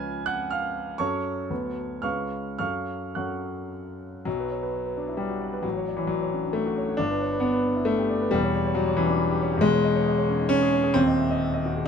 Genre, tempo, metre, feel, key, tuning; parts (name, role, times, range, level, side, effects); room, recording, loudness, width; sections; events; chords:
classical, romantic character piece for solo piano; 105-140 BPM; 3/4; rubato; F# minor, B minor from 4.3 s; A4 = 442 Hz
clear concert grand piano; solo; 0.0-11.9 s; D#1 to G#6; -23 LUFS; left 1 dB
moderate studio reverb, RT60 0.5 s; minimal, uncompressed stereo recording; -23 LUFS; side -7 dB against mid
0.0-4.3 A section; 4.3-11.9 B section
0.0 C#7; 1.0 F#m; 1.5 Bm/D; 2.0 C#7; 2.6 F#m; 4.3 Bm; 5.6 F#m/A; 7.0 G; 8.3 C#dim/E; 9.6 C#m/E; 11.0 G#7/D#